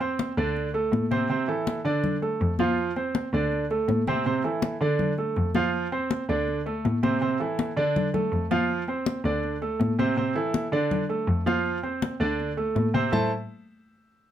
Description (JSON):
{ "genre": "latin, Cuban son and guajira", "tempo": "162 BPM", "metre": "4/4", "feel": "straight", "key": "A minor", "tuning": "A4 = 440 Hz", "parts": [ { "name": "warm baby grand piano", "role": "arpeggios", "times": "0.0-13.3 s", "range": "C3 to A5", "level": "-26 LUFS", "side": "right 3 dB", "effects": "none" }, { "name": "muted cello", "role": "bass", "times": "0.0-13.3 s", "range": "D2 to D3", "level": "-29 LUFS", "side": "equal", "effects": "none" }, { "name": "congas", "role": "percussion", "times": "0.0-13.2 s", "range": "none", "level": "-29 LUFS", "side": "left 4 dB", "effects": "none" } ], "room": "moderate studio reverb, RT60 0.5 s", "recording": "none", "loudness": "-23 LUFS", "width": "side -10 dB against mid", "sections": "0.0-10.2 A section; 10.2-13.1 B section; 13.1-14.3 C section", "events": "none", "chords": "0.0 F5; 0.6 D5; 1.3 Am; 2.0 D5; 2.8 F5; 3.5 D5; 4.3 Am; 5.0 D5; 5.7 F5; 6.5 D5; 7.2 Am; 8.0 D5; 8.7 F5; 9.4 D5; 10.2 Am; 10.9 D5; 11.7 F5; 12.4 D5; 13.1 Am" }